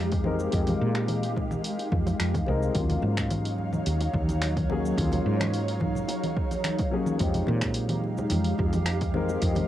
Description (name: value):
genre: sunset chillout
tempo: 108 BPM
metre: 4/4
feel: straight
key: unclear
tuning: A4 = 440 Hz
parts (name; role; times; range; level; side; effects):
- dark baby grand piano; accompaniment; 0.0-9.7 s; Gb3 to Bb4; -32 LUFS; moving between left 5 dB and right 2 dB; auto-pan, cassette tape, analog delay
- ethereal airy pad; sustained chords; 0.0-9.7 s; Gb3 to F5; -30 LUFS; equal; ensemble chorus, built-in reverb, cassette tape
- woody fretless electric bass; bass; 0.0-9.6 s; C2 to Bb2; -28 LUFS; equal; none
- deep house drum kit; drums; 0.1-9.7 s; congas, finger snaps, hi-hat, shaker; -33 LUFS; left 1 dB; overdrive, cassette tape
- electronic kick drum; drums; 0.1-9.5 s; none; -31 LUFS; equal; overdrive, cassette tape
- bongos and congas; percussion; 0.4-9.7 s; none; -37 LUFS; right 2 dB; none
room: light reverb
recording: home recording on cassette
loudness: -24 LUFS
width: side -12 dB against mid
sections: 0.0-9.7 A section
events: none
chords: 0.0 Fm9; 2.8 Ebm9; 7.2 Fm9